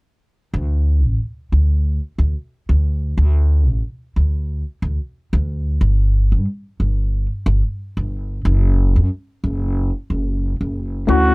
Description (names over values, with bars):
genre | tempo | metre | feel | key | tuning
sunset chillout | 91 BPM | 4/4 | swing 54% on 16ths | D major | A4 = 440 Hz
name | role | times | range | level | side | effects
upright bass | bass | 0.5-11.3 s | F#1 to G2 | -16 LUFS | equal | none
trumpet with cup mute | melody | 11.1-11.3 s | F#4 | -17 LUFS | equal | none
tine electric piano | accompaniment | 11.1-11.3 s | A3 to F#4 | -15 LUFS | left 4 dB | medium stereo tremolo, auto-pan, low-pass filter
room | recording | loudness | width
small room ambience | dry, gritty hardware recording | -17 LUFS | side -25 dB against mid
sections
0.5-11.1 A section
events
none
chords
0.5 D5; 5.8 N.C.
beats
| 0.54 1.20 1.86 2.52 | 3.17 3.83 4.49 5.15 | 5.81 6.47 7.13 7.79 | 8.45 9.11 9.77 10.43 | 11.09